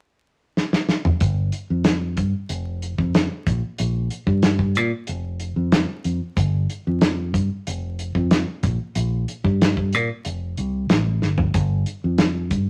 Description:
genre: psychedelic rock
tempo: 93 BPM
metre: 4/4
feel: straight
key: unclear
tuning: A4 = 439 Hz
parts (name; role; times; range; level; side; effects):
- damped 70s drum kit; drums; 0.6-12.7 s; hi-hat, kick drum, snare drum, toms; -22 LUFS; equal; none
- fingered electric bass; bass; 1.2-12.7 s; F1 to Bb2; -24 LUFS; equal; none
room: moderate studio reverb, RT60 0.8 s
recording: vinyl crackle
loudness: -22 LUFS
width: mono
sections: 0.0-1.2 A section; 1.2-12.7 B section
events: drum fill 0.6-1.2, 11.2-11.6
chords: none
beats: 0.58 | 1.22 1.87 2.51 3.15 | 3.80 4.44 5.09 5.73 | 6.38 7.02 7.67 8.32 | 8.96 9.61 10.26 10.91 | 11.55 12.20

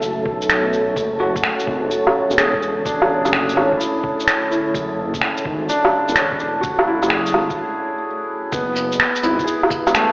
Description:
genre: future garage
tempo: 127 BPM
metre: 4/4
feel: swing 67% on 16ths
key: unclear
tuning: A4 = 440 Hz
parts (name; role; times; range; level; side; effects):
- felt-muted upright piano; accompaniment; 0.0-10.1 s; A3 to E5; -21 LUFS; equal; vintage 12-bit sampler grit, sidechain pumping, tape echo
- deep dark ambient pad; sustained chords; 0.0-10.1 s; D3 to E5; -26 LUFS; equal; chorus, built-in reverb, sidechain pumping
- dark detuned saw bass; bass; 0.0-10.1 s; E1 to B1; -26 LUFS; equal; tube saturation, sidechain pumping
- electronic shaker, finger snaps, woodblock and cabasa; drums; 0.0-10.1 s; none; -19 LUFS; equal; none
- wind-like tuned noise texture; texture; 0.0-7.6 s; A3 to A4; -27 LUFS; equal; built-in reverb
- electronic kick drum; drums; 0.3-9.8 s; none; -31 LUFS; equal; none
room: wet lush hall reverb, RT60 2.2 s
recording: played on a big sound system in a bare room, stone room reverb, AM radio sound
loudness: -16 LUFS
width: side -24 dB against mid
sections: 0.0-8.5 A section; 8.5-10.1 B section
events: break 7.6-8.5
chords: 0.0 F#m11; 1.0 Dmaj9; 8.5 F#9sus4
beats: 0.02 0.49 | 0.96 1.44 1.91 2.38 | 2.85 3.33 3.80 4.27 | 4.75 5.22 5.69 6.16 | 6.63 7.11 7.58 8.05 | 8.52 9.00 9.47 9.94

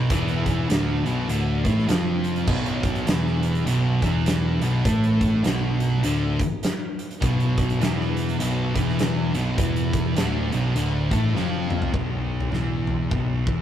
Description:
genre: stoner and doom metal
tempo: 101 BPM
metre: 4/4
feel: swing 60% on 8ths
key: unclear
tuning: A4 = 441 Hz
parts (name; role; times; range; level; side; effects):
- high-gain distorted guitar; riff; 0.0-11.9 s; B1 to A3; -29 LUFS; right 2 dB; distortion
- thick fuzz guitar; riff; 0.0-13.6 s; B1 to A3; -26 LUFS; left 4 dB; distortion
- thick fuzz guitar; riff; 0.0-13.6 s; B1 to A3; -27 LUFS; right 4 dB; distortion
- picked electric bass; bass; 0.0-13.6 s; B0 to A1; -27 LUFS; equal; overdrive
- big rock drum kit; drums; 0.1-13.6 s; crash cymbal, hi-hat, kick drum, snare drum, toms; -26 LUFS; equal; none
room: light reverb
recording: rough rehearsal-room recording, tube saturation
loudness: -20 LUFS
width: side -10 dB against mid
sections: 0.0-11.9 A section; 11.9-13.6 B section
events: drum fill 11.3-11.9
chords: 0.0 Bm; 11.9 N.C.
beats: | 0.09 0.69 1.28 1.87 | 2.47 3.06 3.66 4.25 | 4.84 5.44 6.03 6.62 | 7.21 7.80 8.40 8.99 | 9.58 10.17 10.76 11.34 | 11.93 12.52 13.11

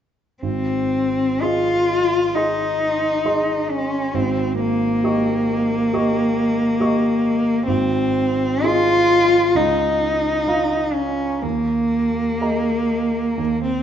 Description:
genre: classical, romantic duo for cello and grand piano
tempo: 65 BPM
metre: 4/4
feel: uneven beats, rubato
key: Ab major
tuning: A4 = 440 Hz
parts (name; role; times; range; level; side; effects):
- rich cello; melody; 0.4-13.8 s; Bb3 to F4; -18 LUFS; left 1 dB; none
- clear baby grand piano; accompaniment; 0.4-13.8 s; Ab1 to Db6; -24 LUFS; right 5 dB; none
room: wet recital hall reverb, RT60 1.5 s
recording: nothing above 7.7 kHz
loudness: -17 LUFS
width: side -9 dB against mid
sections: 0.4-13.8 A section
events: none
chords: 0.4 Ab; 4.1 Eb7/Ab; 7.7 Ab; 9.6 Bbm/Db; 11.4 Ebsus4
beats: | 0.42 1.42 2.35 3.25 | 4.14 5.04 5.93 6.81 | 7.69 8.65 9.56 10.47 | 11.43 12.42 13.39

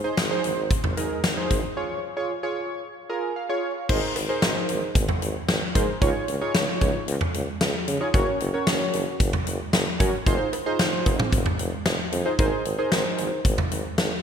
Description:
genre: synth-pop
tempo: 113 BPM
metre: 4/4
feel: straight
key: Ab mixolydian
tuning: A4 = 444 Hz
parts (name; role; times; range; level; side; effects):
- warm analog keys; accompaniment; 0.0-13.4 s; Db4 to Ab5; -27 LUFS; right 2 dB; chorus
- clear tuba; bass; 0.2-14.1 s; F1 to Db3; -29 LUFS; equal; none
- huge arena drum kit; drums; 0.2-14.1 s; cowbell, crash cymbal, hi-hat, kick drum, snare drum, toms; -24 LUFS; equal; gated reverb
room: moderate lush hall reverb, RT60 2.6 s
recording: bright 1980s-style digital production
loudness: -22 LUFS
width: side -8 dB against mid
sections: 0.0-3.9 A section; 3.9-14.2 B section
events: break 1.8-3.9; synth keys fill 2.8-3.9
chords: 0.0 Ab; 1.8 Db; 3.9 Abadd9; 6.0 Dbadd9; 8.1 Gb; 10.3 Fm7; 12.4 Abadd9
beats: 0.18 0.71 1.24 | 1.77 2.30 2.83 3.36 | 3.89 4.42 4.96 5.49 | 6.02 6.55 7.08 7.61 | 8.14 8.67 9.20 9.73 | 10.26 10.79 11.33 11.86 | 12.39 12.92 13.45 13.98

